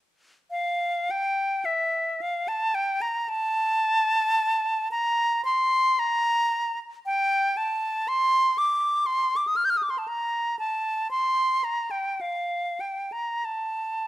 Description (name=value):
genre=classical, free, expressive piece for unaccompanied flute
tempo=56 BPM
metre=4/4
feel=uneven beats, rubato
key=unclear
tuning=A4 = 440 Hz
part: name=silver concert flute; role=solo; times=0.5-14.1 s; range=E5 to G6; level=-23 LUFS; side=equal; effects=none
room=light reverb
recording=close, detailed microphones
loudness=-23 LUFS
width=side -15 dB against mid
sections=0.5-14.1 A section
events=none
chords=none